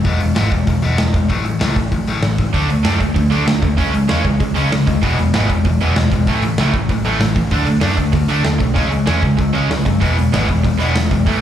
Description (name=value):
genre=punk rock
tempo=193 BPM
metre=4/4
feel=straight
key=E mixolydian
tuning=A4 = 440 Hz
part: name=distorted electric guitar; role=riff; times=0.0-11.4 s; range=A2 to D4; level=-19 LUFS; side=left 6 dB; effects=distortion, slapback echo
part: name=overdriven picked electric bass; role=bass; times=0.0-11.4 s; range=E1 to F#2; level=-18 LUFS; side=equal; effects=none
part: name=big rock drum kit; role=drums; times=0.0-11.3 s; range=hi-hat, kick drum, snare drum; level=-20 LUFS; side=equal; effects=none
part: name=overdriven electric guitar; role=riff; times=2.5-11.4 s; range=E2 to D4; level=-20 LUFS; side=right 11 dB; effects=slapback echo
room=small room ambience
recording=live gig heard through the venue's PA, club reverb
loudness=-14 LUFS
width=side -10 dB against mid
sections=0.0-11.4 A section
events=none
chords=0.1 E; 1.3 A5; 2.5 D5; 3.8 C#5; 5.0 E; 6.3 A5; 7.5 D5; 8.8 C#5; 10.0 E